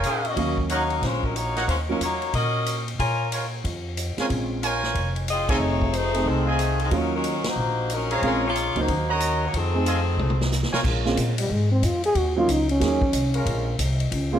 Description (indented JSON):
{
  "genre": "jazz, big band swing",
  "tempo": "183 BPM",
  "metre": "4/4",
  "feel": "swing 63% on 8ths",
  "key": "Bb minor",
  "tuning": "A4 = 439 Hz",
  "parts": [
    { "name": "clear trumpet section", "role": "stabs", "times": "0.0-10.8 s", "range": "Eb4 to Bb5", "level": "-28 LUFS", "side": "right 2 dB", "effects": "none" },
    { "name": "upright bass", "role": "bass", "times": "0.0-14.4 s", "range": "F1 to Bb2", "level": "-26 LUFS", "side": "equal", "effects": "none" },
    { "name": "swinging big-band drum kit", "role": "drums", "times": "0.0-14.2 s", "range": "crash cymbal, hi-hat, kick drum, ride cymbal, snare drum, toms", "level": "-30 LUFS", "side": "left 1 dB", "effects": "none" },
    { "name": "clear saxophone section", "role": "melody", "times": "0.1-3.3, 5.3-10.5 s", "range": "Eb3 to Ab5", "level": "-26 LUFS", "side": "left 3 dB", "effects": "none" },
    { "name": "warm upright piano", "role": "accompaniment", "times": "0.4-2.0, 4.2-14.4 s", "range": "C3 to F5", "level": "-27 LUFS", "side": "right 3 dB", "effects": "none" },
    { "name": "mellow trombone section", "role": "sustained chords", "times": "10.8-13.8 s", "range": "Ab3 to Bb4", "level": "-32 LUFS", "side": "left 1 dB", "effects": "none" },
    { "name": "breathy trombone", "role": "melody", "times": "11.4-13.4 s", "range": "G3 to Ab4", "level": "-23 LUFS", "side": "equal", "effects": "none" }
  ],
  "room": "moderate large studio reverb, RT60 1.3 s",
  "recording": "none",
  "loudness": "-21 LUFS",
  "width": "side -10 dB against mid",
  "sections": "0.0-10.8 A section; 10.8-14.4 B section",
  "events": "band accent 5.4, 7.4; drum fill 10.2-10.8; trombone solo 10.8-14.4",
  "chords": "0.4 Ebm7; 3.0 Bbm7; 5.6 F7#9; 6.9 Ebm7; 8.2 Bbm7; 8.9 Ebm7; 9.5 F7#9; 10.8 Bbm7; 12.2 Ebm7; 13.5 Bbm7",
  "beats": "0.04 | 0.37 0.70 1.02 1.35 | 1.68 2.01 2.33 2.66 | 2.99 3.32 3.64 3.97 | 4.30 4.62 4.95 5.28 | 5.61 5.93 6.26 6.59 | 6.92 7.25 7.57 7.90 | 8.23 8.55 8.88 9.21 | 9.54 9.87 10.19 10.52 | 10.85 11.17 11.50 11.83 | 12.15 12.48 12.81 13.14 | 13.46 13.79 14.12"
}